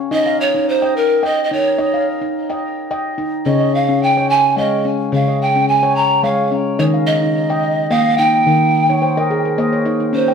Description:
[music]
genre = world meditative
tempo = 108 BPM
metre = 3/4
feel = swing 53% on 16ths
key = unclear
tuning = A4 = 440 Hz
[part]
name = handpan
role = arpeggios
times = 0.0-10.3 s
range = Db3 to G5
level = -17 LUFS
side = left 1 dB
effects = none
[part]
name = breathy mellow pan flute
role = melody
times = 0.1-10.3 s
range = Bb4 to Bb5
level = -16 LUFS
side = right 2 dB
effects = ping-pong delay
[sound]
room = wet studio reverb, RT60 0.6 s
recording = none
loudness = -13 LUFS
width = side -6 dB against mid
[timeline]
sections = 0.0-10.1 A section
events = handpan fill 8.9-10.1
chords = 0.1 Eb; 3.5 Db; 6.8 Eb

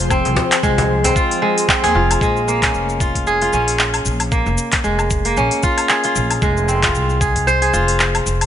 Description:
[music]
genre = organic downtempo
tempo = 114 BPM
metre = 4/4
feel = swing 56% on 16ths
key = Bb minor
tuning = A4 = 440 Hz
[part]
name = airy breathy pad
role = sustained chords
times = 0.0-2.2 s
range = F3 to C5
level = -25 LUFS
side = left 2 dB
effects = chorus, vintage 12-bit sampler grit, sidechain pumping
[part]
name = kora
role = arpeggios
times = 0.0-8.5 s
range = Ab3 to C5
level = -17 LUFS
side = right 1 dB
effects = ping-pong delay
[part]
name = upright bass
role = bass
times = 0.0-8.5 s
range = F1 to Eb2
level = -21 LUFS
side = equal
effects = none
[part]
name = afro-pop drum kit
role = drums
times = 0.1-8.5 s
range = cabasa, handclaps, hi-hat, woodblock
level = -20 LUFS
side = left 1 dB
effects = none
[part]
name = electronic kick drum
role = drums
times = 0.1-7.5 s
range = none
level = -21 LUFS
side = equal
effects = none
[part]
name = cajon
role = percussion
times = 0.4-1.9 s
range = none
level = -22 LUFS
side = left 2 dB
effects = none
[sound]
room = light reverb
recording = nothing above 10.8 kHz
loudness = -14 LUFS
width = side -10 dB against mid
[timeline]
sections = 0.0-2.2 A section; 2.2-8.5 B section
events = none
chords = 0.0 Fm; 2.2 Bbm7

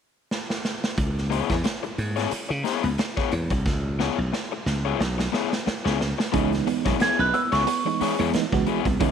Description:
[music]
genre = funk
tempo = 90 BPM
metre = 4/4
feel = swing 56% on 16ths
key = C# minor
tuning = A4 = 442 Hz
[part]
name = raw garage drum kit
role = drums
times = 0.3-9.1 s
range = hi-hat, kick drum, snare drum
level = -27 LUFS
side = right 1 dB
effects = none
[part]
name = glassy slap bass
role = bass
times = 1.0-9.1 s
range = B1 to C#3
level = -26 LUFS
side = equal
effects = none
[part]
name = crunchy overdriven guitar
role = accompaniment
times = 1.3-9.1 s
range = B3 to C#5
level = -28 LUFS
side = left 12 dB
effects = none
[part]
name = clean electric guitar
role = riff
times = 6.3-9.1 s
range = G#3 to C#4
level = -31 LUFS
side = right 13 dB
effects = none
[part]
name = mellow reed electric piano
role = stabs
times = 6.3-9.1 s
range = E3 to F#4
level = -27 LUFS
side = right 14 dB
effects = fast tremolo, slapback echo
[part]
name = celesta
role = melody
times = 7.0-8.2 s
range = C#6 to G#6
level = -23 LUFS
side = right 2 dB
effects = slapback echo
[part]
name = warm horn section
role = second line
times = 7.2-7.4 s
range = G#3 to B4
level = -33 LUFS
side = right 12 dB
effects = none
[sound]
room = light reverb, studio ambience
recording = 1960s-style stereo with parts hard left and right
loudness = -22 LUFS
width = side -8 dB against mid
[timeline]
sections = 1.0-6.3 A section; 6.3-9.1 B section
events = drum fill 0.3-1.0, 3.7-6.3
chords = 0.0 N.C.; 1.0 C#m7

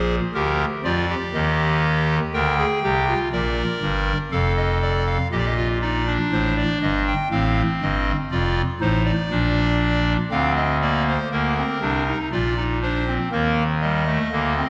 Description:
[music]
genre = classical, baroque-style 3-part fugue for pipe organ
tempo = 60 BPM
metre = 4/4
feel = straight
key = unclear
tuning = A4 = 440 Hz
[part]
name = pipe organ, clarinet reed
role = solo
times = 0.0-14.7 s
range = F1 to G5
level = -21 LUFS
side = equal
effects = none
[sound]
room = wet scoring stage reverb, RT60 2.1 s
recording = none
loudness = -21 LUFS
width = mono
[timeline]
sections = 0.0-11.3 A section; 11.3-14.7 B section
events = none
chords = 0.0 Bb; 1.3 Eb; 3.3 Bb; 5.3 Cm7/Bb (rootless); 7.3 F7; 9.3 Bb; 13.3 Eb

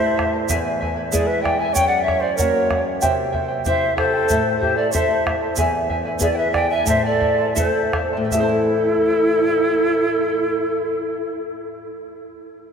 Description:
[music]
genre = andean folk, Andean ensemble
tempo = 76-95 BPM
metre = 2/4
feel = straight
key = A dorian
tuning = A4 = 440 Hz
[part]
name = polished pan flute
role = melody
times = 0.0-11.4 s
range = A4 to G#5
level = -21 LUFS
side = left 1 dB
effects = none
[part]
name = breathy bright large quena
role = second line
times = 0.0-11.4 s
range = E4 to E5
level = -24 LUFS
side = right 3 dB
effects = none
[part]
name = charango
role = accompaniment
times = 0.0-11.9 s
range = E4 to A5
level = -25 LUFS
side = right 1 dB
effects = none
[part]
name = nylon-string guitar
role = accompaniment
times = 0.0-11.5 s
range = E2 to A4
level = -27 LUFS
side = left 3 dB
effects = none
[part]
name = bombo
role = percussion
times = 0.2-8.7 s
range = none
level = -27 LUFS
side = right 1 dB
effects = none
[part]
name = egg shaker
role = percussion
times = 0.5-8.7 s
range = none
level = -28 LUFS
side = right 8 dB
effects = none
[sound]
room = wet cathedral reverb, RT60 6.0 s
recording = in a vast, echoing space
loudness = -17 LUFS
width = side -6 dB against mid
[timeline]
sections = 0.0-8.3 A section; 8.3-11.5 B section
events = slowing down 5.6-8.3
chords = 0.5 E; 1.8 F#; 3.0 C; 4.3 Am; 5.6 E; 6.9 Am

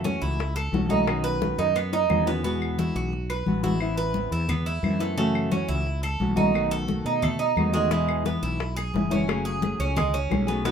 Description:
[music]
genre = latin, Cuban son and guajira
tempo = 176 BPM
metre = 4/4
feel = straight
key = E major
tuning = A4 = 440 Hz
[part]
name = nylon-string guitar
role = accompaniment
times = 0.0-10.7 s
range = B2 to G#4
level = -28 LUFS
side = left 3 dB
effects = none
[part]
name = Cuban tres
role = arpeggios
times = 0.0-10.7 s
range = G#3 to B4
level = -27 LUFS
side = right 5 dB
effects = none
[part]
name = mellow fretless electric bass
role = bass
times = 0.0-10.7 s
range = F#1 to B2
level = -29 LUFS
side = equal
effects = none
[part]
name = bongos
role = percussion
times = 0.1-2.4, 7.9-10.7 s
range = none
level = -34 LUFS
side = left 7 dB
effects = none
[part]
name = congas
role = percussion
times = 0.1-10.7 s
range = none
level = -28 LUFS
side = left 2 dB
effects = none
[part]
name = claves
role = percussion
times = 0.6-10.5 s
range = none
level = -37 LUFS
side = left 6 dB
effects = none
[sound]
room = moderate studio ambience, RT60 0.5 s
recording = minimal, uncompressed stereo recording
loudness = -22 LUFS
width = side -7 dB against mid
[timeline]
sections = 0.0-2.4 A section; 2.4-10.7 A section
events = drum fill 1.4-2.4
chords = 0.0 F#m7; 1.1 Badd9; 2.4 Eadd9; 3.8 Amadd9; 5.2 F#m7; 6.5 B7; 7.9 E; 9.3 F#madd9

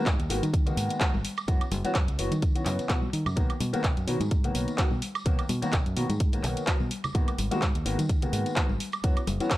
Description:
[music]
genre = filtered disco house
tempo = 127 BPM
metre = 4/4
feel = swing 55% on 16ths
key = B major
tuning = A4 = 440 Hz
[part]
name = warm baby grand piano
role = accompaniment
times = 0.0-9.5 s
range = D#3 to F#4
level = -31 LUFS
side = left 1 dB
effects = phaser, sidechain pumping, low-pass filter
[part]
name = fingered electric bass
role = bass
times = 0.1-9.6 s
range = F#1 to D#3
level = -30 LUFS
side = equal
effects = sidechain pumping, low-pass filter
[part]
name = electronic kick drum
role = drums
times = 0.1-9.6 s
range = none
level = -26 LUFS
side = equal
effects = none
[part]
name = house drum kit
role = drums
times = 0.1-9.6 s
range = handclaps, hi-hat, woodblock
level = -32 LUFS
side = right 1 dB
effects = sidechain pumping on hats, sidechain pumping on perc
[part]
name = tambourine and congas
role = percussion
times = 0.1-9.6 s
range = none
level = -37 LUFS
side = left 2 dB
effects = sidechain pumping on perc, low-pass filter on perc
[sound]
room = digital ambience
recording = none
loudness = -25 LUFS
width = side -16 dB against mid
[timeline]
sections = 0.0-9.6 A section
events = none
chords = 0.0 G#m9; 1.2 F#7sus4; 3.4 Bmaj7; 7.1 G#m9; 8.8 F#7sus4

